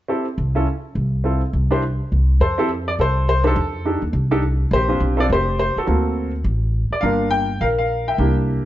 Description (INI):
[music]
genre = jazz piano trio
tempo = 208 BPM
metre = 4/4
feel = swing 60% on 8ths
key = F major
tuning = A4 = 441 Hz
[part]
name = clear baby grand piano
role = melody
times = 0.1-8.7 s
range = Bb3 to G5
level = -20 LUFS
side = equal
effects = none
[part]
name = upright bass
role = bass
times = 0.4-8.6 s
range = F1 to F2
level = -20 LUFS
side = equal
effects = none
[sound]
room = light reverb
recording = dark, warm production, nothing above 7.7 kHz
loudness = -17 LUFS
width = side -13 dB against mid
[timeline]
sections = 0.1-2.4 A section; 2.4-8.7 B section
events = none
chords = 0.1 Fmaj9 (rootless); 0.7 N.C.; 1.2 Dm7 (rootless); 1.8 N.C.; 2.4 F; 3.6 F13; 4.7 Bb69; 5.9 D7b13; 7.0 Gm7